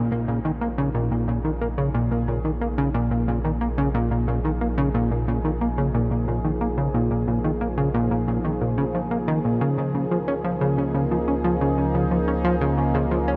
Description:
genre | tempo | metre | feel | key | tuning
ambient, sequencer-driven space music | 90 BPM | 4/4 | straight | Bb minor | A4 = 445 Hz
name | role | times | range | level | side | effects
sweeping resonant pad | sustained chords | 0.0-13.4 s | F3 to Ab4 | -30 LUFS | equal | chorus
plucky analog bass | riff | 0.0-13.3 s | Bb2 to Db4 | -25 LUFS | equal | delay
warm sub bass | bass | 0.0-13.4 s | Bb1 to Db2 | -32 LUFS | equal | none
room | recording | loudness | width
moderate huge ambient reverb, RT60 8.0 s | dreamy mix soaked in reverb | -23 LUFS | mono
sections
0.0-13.4 A section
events
fade-in on analog synth pad 0.0-13.4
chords
0.0 Bbm7; 9.6 Db

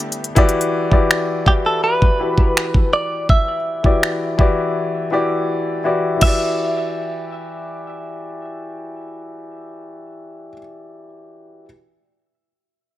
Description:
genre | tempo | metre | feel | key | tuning
contemporary R&B | 82 BPM | 4/4 | straight | E minor | A4 = 440 Hz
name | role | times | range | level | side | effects
warm concert grand piano | accompaniment | 0.0-11.7 s | E3 to D5 | -21 LUFS | left 2 dB | none
smooth R&B drum kit | drums | 0.0-6.4 s | crash cymbal, finger snaps, hi-hat, kick drum | -16 LUFS | equal | none
direct-recorded clean electric guitar | melody | 1.5-10.5 s | G4 to E5 | -21 LUFS | right 1 dB | tape echo
room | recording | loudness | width
little or no reverb | none | -15 LUFS | side -14 dB against mid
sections
0.4-6.2 A section; 6.2-9.1 B section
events
break 0.0-0.4, 4.8-6.2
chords
0.4 Em9

